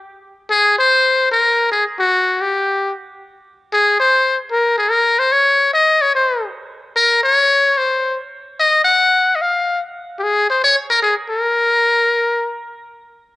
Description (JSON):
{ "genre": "jazz", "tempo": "148 BPM", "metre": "4/4", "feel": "swing 67% on 8ths", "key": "unclear", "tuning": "A4 = 440 Hz", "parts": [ { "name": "trumpet with metal mute", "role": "solo", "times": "0.5-12.6 s", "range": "Gb4 to Gb5", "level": "-13 LUFS", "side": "left 2 dB", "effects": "cassette tape" } ], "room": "moderate spring reverb, RT60 2.3 s", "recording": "home recording on cassette, nothing above 10.5 kHz", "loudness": "-13 LUFS", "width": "side -17 dB against mid", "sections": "0.1-13.0 A section", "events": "none", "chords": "none", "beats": "| 0.07 0.48 0.88 1.29 | 1.69 2.10 2.50 2.91 | 3.31 3.72 4.12 4.53 | 4.93 5.34 5.74 6.15 | 6.55 6.96 7.36 7.77 | 8.18 8.58 8.98 9.39 | 9.80 10.20 10.61 11.01 | 11.42 11.82 12.23" }